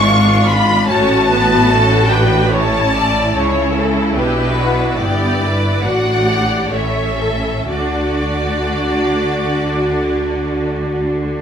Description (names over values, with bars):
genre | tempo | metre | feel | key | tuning
classical, slow romantic movement for string orchestra | 60-74 BPM | 4/4 | rubato | D major | A4 = 440 Hz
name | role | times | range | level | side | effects
clear symphonic violin section | melody | 0.0-11.1 s | B4 to C#6 | -19 LUFS | left 2 dB | none
rich symphonic violin section | second line | 0.0-11.1 s | F4 to D5 | -21 LUFS | equal | none
rich symphonic viola section | accompaniment | 0.0-11.4 s | B3 to A4 | -19 LUFS | equal | none
rich symphonic cello section | bass | 0.0-11.4 s | G2 to D3 | -20 LUFS | right 1 dB | none
rich symphonic double bass section | bass | 0.0-11.4 s | G1 to D2 | -20 LUFS | equal | none
room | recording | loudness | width
wet stone room reverb, RT60 1.1 s | minimal, uncompressed stereo recording | -13 LUFS | side -8 dB against mid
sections
0.0-11.4 A section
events
none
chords
0.0 E13b9/G# (rootless); 0.9 A; 4.2 G/B; 5.8 D/A; 6.7 A; 7.7 D